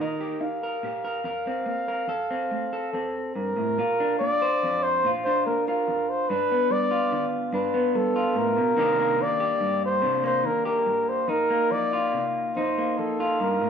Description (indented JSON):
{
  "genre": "folk",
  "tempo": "72 BPM",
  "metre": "3/4",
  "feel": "straight",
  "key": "Bb major",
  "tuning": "A4 = 440 Hz",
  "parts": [
    { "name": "breathy flugelhorn", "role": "melody", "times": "0.0-13.7 s", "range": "A4 to F5", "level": "-24 LUFS", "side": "equal", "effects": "none" },
    { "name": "electric guitar through a small old amp", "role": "accompaniment", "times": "0.0-13.7 s", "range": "F2 to C5", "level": "-27 LUFS", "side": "equal", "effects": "none" }
  ],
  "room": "moderate large studio reverb, RT60 0.9 s",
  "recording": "band playing live in one room",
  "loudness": "-22 LUFS",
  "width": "side -7 dB against mid",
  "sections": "0.0-3.8 A section; 3.8-13.7 B section",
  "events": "none",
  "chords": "0.0 Ebadd9; 1.2 Fsus4; 2.1 F; 3.8 Bbadd9; 6.3 G7; 8.8 Cm9; 11.3 F7sus4"
}